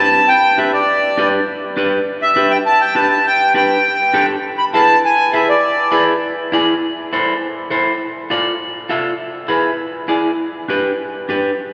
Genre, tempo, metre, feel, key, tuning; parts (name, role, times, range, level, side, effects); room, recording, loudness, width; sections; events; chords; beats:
latin; 202 BPM; 4/4; straight; A4 = 441 Hz
accordion; melody; 0.0-6.0 s; D5 to B5; -16 LUFS; equal
semi-hollow electric guitar; accompaniment; 0.0-11.5 s; D4 to E5; -19 LUFS; equal
wet cathedral reverb, RT60 4.8 s; recorded in a church or concert hall, nothing above 10.5 kHz; -16 LUFS; mono
0.0-6.8 A section; 6.8-11.7 B section
0.0 G; 4.4 E7; 6.8 Am; 8.0 Dm; 9.2 E7; 10.4 G
0.28 0.58 | 0.88 1.17 1.47 1.77 | 2.06 2.36 2.66 2.96 | 3.25 3.55 3.85 4.14 | 4.44 4.74 5.04 5.33 | 5.63 5.93 6.22 6.52 | 6.82 7.12 7.41 7.71 | 8.01 8.31 8.60 8.90 | 9.20 9.50 9.80 10.09 | 10.39 10.69 10.99 11.29